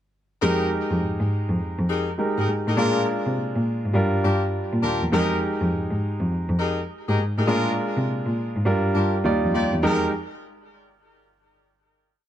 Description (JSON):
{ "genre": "R&B", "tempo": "102 BPM", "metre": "4/4", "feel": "swing 66% on 16ths", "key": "F dorian", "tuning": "A4 = 436 Hz", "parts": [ { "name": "clear baby grand piano", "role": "accompaniment", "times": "0.4-10.1 s", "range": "G3 to D5", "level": "-25 LUFS", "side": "right 1 dB", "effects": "none" }, { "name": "warm horn section", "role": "stabs", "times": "0.4-10.1 s", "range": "D4 to D5", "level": "-28 LUFS", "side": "left 2 dB", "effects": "tape echo" }, { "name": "warm cello", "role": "bass", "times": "0.4-10.1 s", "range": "Eb2 to C3", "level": "-24 LUFS", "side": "equal", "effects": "none" } ], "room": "light reverb", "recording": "dark, warm production", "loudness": "-21 LUFS", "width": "side -11 dB against mid", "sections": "0.4-9.8 verse; 9.8-12.2 final chord", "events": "none", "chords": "0.4 Fm11; 2.8 Bb7; 4.0 Gm7; 5.1 Fm11; 7.5 Bb7; 8.7 Gm7; 9.2 Ebmaj9; 9.8 Fm11" }